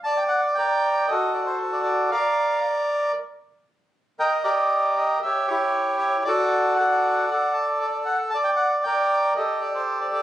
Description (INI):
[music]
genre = tango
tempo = 116 BPM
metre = 4/4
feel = rubato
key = G harmonic minor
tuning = A4 = 441 Hz
[part]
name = bandoneon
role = solo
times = 0.0-10.2 s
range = E4 to A5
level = -20 LUFS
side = equal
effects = none
[sound]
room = moderate large studio reverb, RT60 0.9 s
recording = recorded on a phone in the room, club reverb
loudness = -20 LUFS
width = side -12 dB against mid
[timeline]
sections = 0.1-10.2 A section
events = none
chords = 0.1 Gm; 1.1 F#dim7; 2.1 Bb; 3.2 N.C.; 4.2 Eb; 5.2 Em6; 6.3 D; 8.3 Gm; 9.4 Cm69/G